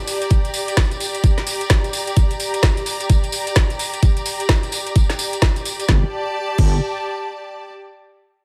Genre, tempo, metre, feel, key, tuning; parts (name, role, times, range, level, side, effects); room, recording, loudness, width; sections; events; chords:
bass house; 129 BPM; 4/4; swing 61% on 16ths; G minor; A4 = 440 Hz
bright symphonic string section; texture; 0.0-7.7 s; G4 to Bb5; -28 LUFS; equal; sidechain pumping
garage drum kit; drums; 0.1-6.7 s; crash cymbal, hi-hat, snare drum; -26 LUFS; equal; overdrive, studio reverb
tambourine; percussion; 0.1-5.9 s; -31 LUFS; equal
electronic kick drum; drums; 0.3-6.7 s; -18 LUFS; equal; overdrive, studio reverb
wobble bass; bass; 5.9-6.8 s; G1; -22 LUFS; equal; chorus, sidechain pumping
small room ambience; -19 LUFS; mono
0.0-5.9 A section; 5.9-7.7 B section
0.0 G5